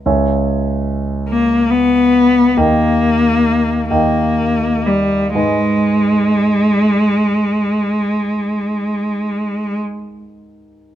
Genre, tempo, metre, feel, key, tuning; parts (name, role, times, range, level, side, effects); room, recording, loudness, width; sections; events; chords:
classical, romantic duo for cello and grand piano; 40-49 BPM (dotted quarters); 12/8; rubato; G# minor; A4 = 440 Hz
dark concert grand piano; accompaniment; 0.0-10.9 s; C#2 to G#5; -18 LUFS; right 1 dB
clear cello; melody; 1.3-9.8 s; G3 to B3; -14 LUFS; left 1 dB
light reverb; minimal, uncompressed stereo recording; -13 LUFS; side -11 dB against mid
0.0-10.9 A section
0.0 C#m; 2.6 D#; 5.4 G#m